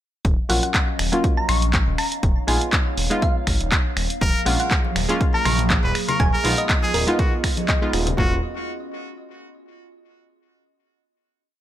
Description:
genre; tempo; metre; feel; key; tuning
deep house; 121 BPM; 4/4; swing 54% on 16ths; Eb minor; A4 = 440 Hz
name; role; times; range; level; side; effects
warbly tape-like pad; sustained chords; 0.6-8.4 s; Gb3 to F5; -31 LUFS; right 2 dB; chorus, built-in reverb, sidechain pumping
smooth synth bass; bass; 0.2-8.4 s; Eb1 to Bb1; -24 LUFS; equal; sidechain pumping
punchy analog drum machine; drums; 0.2-8.3 s; kick drum, toms; -21 LUFS; equal; none
punchy analog drum machine; drums; 0.2-8.2 s; finger snaps, handclaps, hi-hat; -24 LUFS; equal; none
thumb-piano-like synth pluck; melody; 0.5-8.1 s; Bb4 to Db6; -28 LUFS; left 1 dB; chorus, cassette tape, digital delay
filtered dub chord stab; stabs; 0.5-8.4 s; Gb3 to F4; -26 LUFS; equal; chorus, sidechain pumping, digital delay
trumpet with straight mute; melody; 4.2-8.4 s; Gb4 to Cb5; -26 LUFS; equal; digital delay
congas; percussion; 4.2-8.2 s; none; -30 LUFS; left 3 dB; none
room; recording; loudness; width
light reverb, digital ambience; none; -18 LUFS; side -12 dB against mid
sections
0.2-8.2 drop; 8.2-10.2 final chord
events
drop 0.2-8.2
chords
0.2 Ebm9; 2.0 Db9/Eb; 4.2 Gbmaj9/Eb; 6.2 Fm7b5/Eb; 8.2 Ebm9

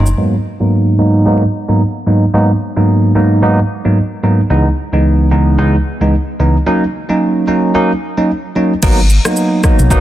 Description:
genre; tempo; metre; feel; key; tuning
afrobeats; 111 BPM; 4/4; swing 58% on 16ths; G# minor; A4 = 436 Hz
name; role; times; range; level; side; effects
barky tine electric piano; accompaniment; 0.0-10.0 s; C#2 to D#4; -11 LUFS; right 1 dB; wide subtle chorus, low-pass filter
warm sub bass; bass; 0.0-0.1, 8.8-10.0 s; F#1 to B1; -12 LUFS; equal; none
afro-pop drum kit; drums; 0.0-0.2, 8.8-10.0 s; crash cymbal, kick drum, rim click, shaker, toms; -13 LUFS; equal; soft clipping on snare
room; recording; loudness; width
light reverb; dense, heavily limited modern master; -10 LUFS; side -13 dB against mid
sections
0.2-8.8 A section; 8.8-10.0 B section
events
drum fill 0.0; filter sweep on tine electric piano 0.2-8.8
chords
0.2 G#m7; 4.5 C#m7; 6.7 D#m7; 8.8 G#m7

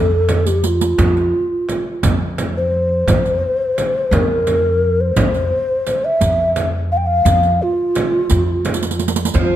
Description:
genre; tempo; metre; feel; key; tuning
Persian modal ensemble; 58 BPM (dotted quarters); 6/8; straight; F dastgah mahur; A4 = 440 Hz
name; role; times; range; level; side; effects
breathy mellow low ney; melody; 0.0-9.6 s; F4 to G5; -17 LUFS; equal; slapback echo
upright bass; bass; 0.0-9.6 s; F2; -18 LUFS; equal; none
frame drum; percussion; 0.3-9.5 s; none; -21 LUFS; right 2 dB; none
riq; percussion; 0.3-9.5 s; none; -24 LUFS; right 8 dB; none
oud; second line; 9.3-9.6 s; F3; -20 LUFS; right 3 dB; none
room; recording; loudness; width
moderate recital hall reverb, RT60 1.4 s; close, detailed microphones; -14 LUFS; side -12 dB against mid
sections
0.0-9.3 A section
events
drum fill 0.3-1.0, 8.6-9.3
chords
none

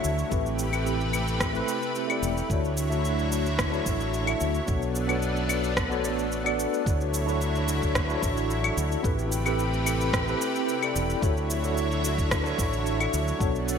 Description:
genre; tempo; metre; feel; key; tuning
sunset chillout; 110 BPM; 4/4; straight; D major; A4 = 440 Hz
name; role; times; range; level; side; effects
tine electric piano; accompaniment; 0.0-13.8 s; A3 to E5; -29 LUFS; moving between left 4 dB and right 5 dB; medium stereo tremolo, auto-pan, digital delay
lush unison pad; sustained chords; 0.0-13.8 s; C3 to C#5; -31 LUFS; left 1 dB; chorus
fretless electric bass; bass; 0.0-13.8 s; E1 to D2; -29 LUFS; equal; lush chorus
electronic shaker, claves and rim click; drums; 0.0-13.8 s; none; -32 LUFS; left 1 dB; overdrive, gated reverb
electronic kick drum; drums; 0.3-13.5 s; none; -29 LUFS; equal; none
room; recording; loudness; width
moderate lush hall reverb, RT60 1.9 s; bright 1980s-style digital production; -24 LUFS; side -7 dB against mid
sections
0.0-6.9 A section; 6.9-13.8 B section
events
none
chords
0.3 Am9; 2.5 Dmaj9; 4.7 Bm9; 6.9 Dmaj9; 9.0 Am9; 11.2 Dmaj9

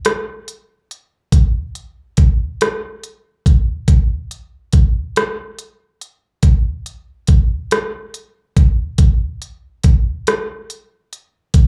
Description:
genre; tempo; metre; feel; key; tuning
R&B; 47 BPM (dotted quarters); 6/8; straight; none; none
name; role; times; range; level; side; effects
smooth R&B drum kit; drums; 0.0-11.7 s; hi-hat, kick drum, rim click; -15 LUFS; equal; none
room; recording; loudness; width
light reverb; live gig heard through the venue's PA, club reverb; -16 LUFS; mono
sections
0.0-11.7 A section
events
none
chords
none

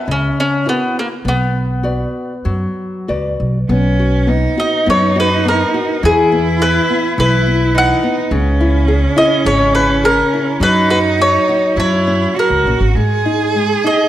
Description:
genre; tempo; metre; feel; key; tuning
fado-style ballad; 103 BPM; 4/4; rubato; B minor, B major from 3.7 s; A4 = 445 Hz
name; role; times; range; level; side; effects
mandolin; melody; 0.0-14.1 s; A#3 to F#5; -15 LUFS; left 1 dB; none
nylon-string guitar; accompaniment; 0.1-14.1 s; C#3 to D5; -20 LUFS; left 2 dB; none
upright bass; bass; 0.1-13.7 s; G#1 to G#2; -17 LUFS; equal; none
clear cello; second line; 3.7-14.1 s; C#4 to G#4; -17 LUFS; right 3 dB; none
room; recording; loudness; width
moderate scoring stage reverb, RT60 1.7 s; none; -12 LUFS; side -12 dB against mid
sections
0.0-3.7 A section; 3.7-14.1 B section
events
none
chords
0.0 F#7; 1.2 Bm; 3.7 Badd9; 6.0 E; 8.3 C#m; 10.6 Badd9/F#; 11.8 F#; 13.0 G#5

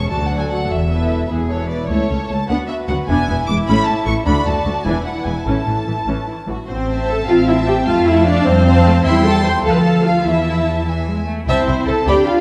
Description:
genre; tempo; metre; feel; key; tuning
quick classical-period movement for string orchestra; 100 BPM (dotted quarters); 6/8; straight; A major, A minor from 6.7 s; A4 = 439 Hz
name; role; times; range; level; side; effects
clear symphonic violin section; melody; 0.0-12.4 s; C5 to D6; -25 LUFS; equal; none
clear studio violin section; second line; 0.0-12.3 s; C#4 to C6; -26 LUFS; equal; none
clear symphonic viola section; accompaniment; 0.0-12.4 s; E3 to C5; -21 LUFS; equal; none
rich symphonic cello section; bass; 0.0-12.4 s; C#2 to E4; -24 LUFS; equal; none
rich symphonic double bass section; bass; 0.0-12.1 s; E1 to F2; -22 LUFS; equal; none
room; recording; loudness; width
wet concert hall reverb, RT60 1.9 s; dark, warm production; -17 LUFS; mono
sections
0.0-6.7 A section; 6.7-12.4 A section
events
none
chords
0.1 D; 0.7 Esus4; 1.9 A; 2.5 Bm; 3.1 E7; 3.7 A; 4.3 D; 4.9 E7; 5.5 A; 6.7 Am; 7.9 F; 9.1 C/E; 9.7 Dm; 10.3 Esus4; 10.9 E; 11.5 Am/C

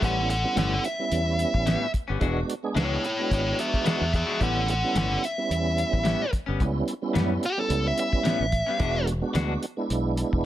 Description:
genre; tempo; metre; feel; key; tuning
straight-eighth soul blues; 109 BPM; 4/4; swing 56% on 16ths; unclear; A4 = 441 Hz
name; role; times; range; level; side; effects
dark smooth lead guitar; melody; 0.0-9.1 s; E4 to F#5; -26 LUFS; equal; overdrive
tonewheel organ; accompaniment; 0.0-10.5 s; G3 to G#4; -30 LUFS; right 4 dB; slow rotary speaker, overdrive, chorus vibrato
electric guitar at the edge of break-up; stabs; 0.0-9.5 s; A2 to F#4; -31 LUFS; left 5 dB; wide subtle chorus
fingered electric bass; bass; 0.0-10.5 s; E1 to F#2; -28 LUFS; equal; none
cloth-damped thuddy drum kit; drums; 0.0-10.4 s; hi-hat, kick drum, snare drum; -28 LUFS; equal; none
room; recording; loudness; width
light reverb; none; -23 LUFS; side -13 dB against mid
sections
0.0-10.5 A section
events
lead electric guitar solo 0.0-10.5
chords
0.0 A9; 2.2 E9; 4.4 A9; 8.8 E9

